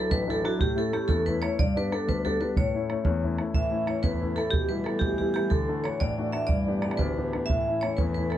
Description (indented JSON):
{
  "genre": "celtic folk, Celtic jig",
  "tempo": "122 BPM (dotted quarters)",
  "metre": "6/8",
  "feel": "straight",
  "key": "A mixolydian",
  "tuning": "A4 = 442 Hz",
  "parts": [
    { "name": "vibraphone with hard mallets", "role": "melody", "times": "0.0-8.4 s", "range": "F#4 to E5", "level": "-29 LUFS", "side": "right 1 dB", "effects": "none" },
    { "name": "warm grand piano", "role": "accompaniment", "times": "0.0-8.4 s", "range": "A1 to G4", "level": "-29 LUFS", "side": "left 3 dB", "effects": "none" },
    { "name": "bodhran", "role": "percussion", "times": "0.1-8.4 s", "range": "none", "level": "-28 LUFS", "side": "right 2 dB", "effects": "none" },
    { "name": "hand-pumped harmonium", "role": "drone", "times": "3.6-8.4 s", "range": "A2 to E3", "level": "-36 LUFS", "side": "equal", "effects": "none" }
  ],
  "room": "light reverb",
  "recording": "dark, warm production",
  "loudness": "-24 LUFS",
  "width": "side -12 dB against mid",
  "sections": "0.0-3.6 A section; 3.6-8.4 B section",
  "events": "none",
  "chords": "0.0 Dadd9; 0.6 A; 1.6 G; 2.6 A; 4.5 G6; 5.5 D; 6.5 G; 7.5 A"
}